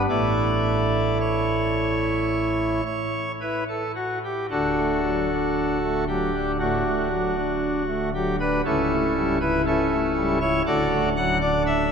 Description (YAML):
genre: classical, chorale-style piece for pipe organ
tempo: 54-60 BPM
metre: 4/4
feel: rubato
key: D major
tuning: A4 = 440 Hz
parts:
  - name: pipe organ, cornet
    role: solo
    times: 0.0-11.9 s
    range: C#1 to F#5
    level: -21 LUFS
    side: equal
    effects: none
room: wet cathedral reverb, RT60 4.6 s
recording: none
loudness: -21 LUFS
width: side -6 dB against mid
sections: 0.0-4.5 A section; 4.5-11.9 B section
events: none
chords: 0.1 A; 4.5 D; 8.6 A7/C#; 10.7 D